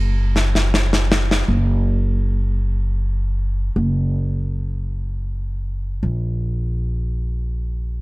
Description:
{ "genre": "six-eight pop ballad", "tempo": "53 BPM (dotted quarters)", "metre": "6/8", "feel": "straight", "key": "unclear", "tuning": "A4 = 440 Hz", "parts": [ { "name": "upright bass", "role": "bass", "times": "0.0-8.0 s", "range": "Gb1 to Bb1", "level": "-19 LUFS", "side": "equal", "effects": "none" }, { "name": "snare drum", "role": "drums", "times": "0.4-1.5 s", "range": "none", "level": "-20 LUFS", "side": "left 1 dB", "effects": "none" } ], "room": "little or no reverb", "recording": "dark, warm production", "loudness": "-18 LUFS", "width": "side -22 dB against mid", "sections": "0.0-1.5 A section; 1.5-6.0 B section; 6.0-8.0 C section", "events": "drum fill 0.4-1.5", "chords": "none", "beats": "0.35 | 1.49 2.62 | 3.76 4.89 | 6.03 7.17" }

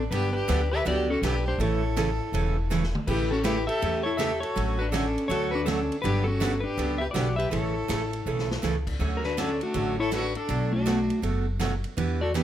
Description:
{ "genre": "country, western swing", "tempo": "162 BPM", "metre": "4/4", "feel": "swing 63% on 8ths", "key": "D major", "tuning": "A4 = 440 Hz", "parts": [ { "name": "clean lap steel guitar", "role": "melody", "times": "0.0-12.4 s", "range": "A3 to E5", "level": "-28 LUFS", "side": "left 3 dB", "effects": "none" }, { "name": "clear fiddle", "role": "second line", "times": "0.0-12.4 s", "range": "D4 to B4", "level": "-33 LUFS", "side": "right 2 dB", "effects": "none" }, { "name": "upright bass", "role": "bass", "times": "0.0-12.4 s", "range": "E1 to E2", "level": "-29 LUFS", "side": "equal", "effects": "none" }, { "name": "picked steel-string acoustic guitar", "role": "accompaniment", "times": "0.1-12.4 s", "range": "B2 to A4", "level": "-30 LUFS", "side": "right 5 dB", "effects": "none" }, { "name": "swinging big-band drum kit", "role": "drums", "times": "0.1-12.4 s", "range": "crash cymbal, hi-hat, kick drum, ride cymbal, snare drum, toms", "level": "-37 LUFS", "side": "equal", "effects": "none" } ], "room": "moderate studio reverb, RT60 0.9 s", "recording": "none", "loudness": "-24 LUFS", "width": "side -11 dB against mid", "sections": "0.0-9.0 A section; 9.0-12.4 B section", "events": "drum fill 2.7-3.1, 8.3-8.6", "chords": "0.1 Gmaj7; 1.6 A; 3.1 A7; 4.6 Dmaj7/A; 6.0 Gmaj7; 7.5 A; 9.0 Dmaj7; 10.5 Bm7", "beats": "| 0.12 0.49 0.86 1.23 | 1.60 1.97 2.34 2.71 | 3.08 3.45 3.82 4.19 | 4.56 4.93 5.30 5.67 | 6.04 6.41 6.78 7.15 | 7.52 7.89 8.26 8.63 | 9.00 9.38 9.75 10.12 | 10.49 10.86 11.23 11.60 | 11.97 12.35" }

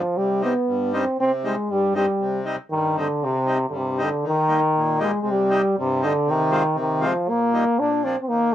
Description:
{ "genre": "alpine folk, alpine dance band", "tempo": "118 BPM", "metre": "2/4", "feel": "rubato", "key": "C harmonic minor, Eb major from 4.2 s", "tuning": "A4 = 441 Hz", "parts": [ { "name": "clear euphonium", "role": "melody", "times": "0.0-8.5 s", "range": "C3 to D4", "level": "-20 LUFS", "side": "equal", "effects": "slapback echo" }, { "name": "accordion", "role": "accompaniment", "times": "0.0-8.5 s", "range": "G2 to F4", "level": "-27 LUFS", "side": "left 2 dB", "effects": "none" } ], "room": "little or no reverb", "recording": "dry, close 1970s-style studio recording", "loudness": "-19 LUFS", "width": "side -11 dB against mid", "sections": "0.0-4.2 A section; 4.2-8.5 B section", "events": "none", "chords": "0.2 Cm; 4.2 Eb; 5.3 Cm; 6.3 Fm/C; 7.3 Eb/Bb; 7.8 Bb", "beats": "| 0.17 0.68 | 1.19 1.69 | 2.19 2.70 | 3.20 3.72 | 4.23 4.75 | 5.26 5.76 | 6.26 6.77 | 7.27 7.78 | 8.29" }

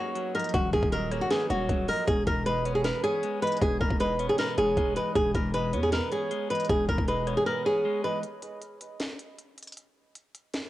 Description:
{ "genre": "hip hop, trap", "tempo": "156 BPM", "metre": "4/4", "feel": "half-time", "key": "unclear", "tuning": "A4 = 441 Hz", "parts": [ { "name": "flamenco guitar", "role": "melody", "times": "0.0-8.2 s", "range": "Gb4 to B4", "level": "-27 LUFS", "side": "equal", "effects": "cassette tape, analog delay" }, { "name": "breathy flute-like synth lead", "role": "second line", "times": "0.0-8.2 s", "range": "Cb5 to Eb5", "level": "-36 LUFS", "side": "right 6 dB", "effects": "chorus, cassette tape, analog delay" }, { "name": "clean electric guitar", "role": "accompaniment", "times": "0.0-8.2 s", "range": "B2 to B4", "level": "-36 LUFS", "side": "left 6 dB", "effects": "cassette tape" }, { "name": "trap drum kit", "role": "drums", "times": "0.2-10.6 s", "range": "hi-hat, kick drum, rim click, snare drum", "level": "-32 LUFS", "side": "equal", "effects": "vintage 12-bit sampler grit, cassette tape" }, { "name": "growling 808-style bass", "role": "bass", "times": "0.5-7.4 s", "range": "Eb1 to E2", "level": "-31 LUFS", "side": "equal", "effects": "none" } ], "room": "light reverb, digital ambience", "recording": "home recording on cassette", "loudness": "-25 LUFS", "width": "side -15 dB against mid", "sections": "0.0-8.2 A section; 8.2-10.7 B section", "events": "drums muted 7.5-8.2; break 8.2-10.7", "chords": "0.0 Ebmadd9; 2.1 E; 8.2 N.C.", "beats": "0.15 | 0.54 0.92 1.31 1.69 | 2.08 2.46 2.85 3.23 | 3.62 4.00 4.39 4.77 | 5.16 5.54 5.92 6.31 | 6.69 7.08 7.46 7.85 | 8.23 8.62 9.00 9.39 | 9.77 10.15 10.54" }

